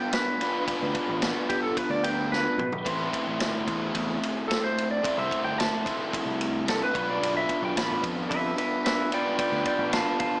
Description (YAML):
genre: indie rock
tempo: 110 BPM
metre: 4/4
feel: straight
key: unclear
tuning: A4 = 440 Hz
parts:
  - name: electric guitar through a small old amp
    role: melody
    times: 0.0-10.4 s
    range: G4 to B5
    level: -28 LUFS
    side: right 1 dB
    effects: tape echo
  - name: biting overdriven guitar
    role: riff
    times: 0.0-10.4 s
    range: A2 to C5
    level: -29 LUFS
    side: left 1 dB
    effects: none
  - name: raw garage guitar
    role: riff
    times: 0.0-10.4 s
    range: A2 to C5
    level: -33 LUFS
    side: right 1 dB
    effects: overdrive, analog chorus, tape echo
  - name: vintage drum kit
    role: drums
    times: 0.1-10.3 s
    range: kick drum, ride cymbal, snare drum, toms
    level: -32 LUFS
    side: equal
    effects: none
  - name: growling picked electric bass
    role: bass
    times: 0.8-10.0 s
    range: G1 to B2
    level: -34 LUFS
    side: equal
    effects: overdrive
room: light reverb, studio ambience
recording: small speaker sound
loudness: -24 LUFS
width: side -22 dB against mid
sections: 0.0-10.4 A section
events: clean electric guitar solo 0.0-10.4; drum fill 2.3-2.9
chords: 0.0 Bdim; 2.9 Am; 6.9 Bdim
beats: 0.13 | 0.68 1.22 1.77 2.31 | 2.86 3.41 3.95 4.50 | 5.04 5.59 6.13 6.67 | 7.22 7.76 8.30 8.85 | 9.39 9.93